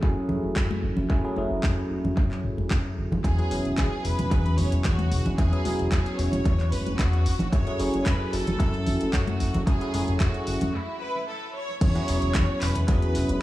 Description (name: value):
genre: nu-disco, nu disco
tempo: 112 BPM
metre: 4/4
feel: straight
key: E major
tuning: A4 = 440 Hz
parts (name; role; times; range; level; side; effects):
- bell-like tine electric piano; accompaniment; 0.0-13.4 s; F#3 to A4; -29 LUFS; equal; phaser, sidechain pumping, analog delay
- chorused synth bass; bass; 0.0-13.4 s; E1 to F#2; -26 LUFS; equal; sidechain pumping
- electronic kick drum; drums; 0.0-13.0 s; none; -24 LUFS; equal; none
- congas; percussion; 0.3-10.7 s; none; -33 LUFS; equal; analog delay
- house drum kit; drums; 0.6-13.4 s; crash cymbal, handclaps, hi-hat; -36 LUFS; equal; analog delay
- clear studio violin section; melody; 3.2-13.4 s; E4 to C#5; -33 LUFS; equal; tape echo
room: light reverb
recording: echo-heavy mix, studio reverb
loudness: -22 LUFS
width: side -16 dB against mid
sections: 0.0-11.8 A section; 11.8-13.4 B section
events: break 10.7-11.8; drop 11.8-13.4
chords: 0.0 F#m9; 3.2 E69; 7.3 F#m9; 11.8 E69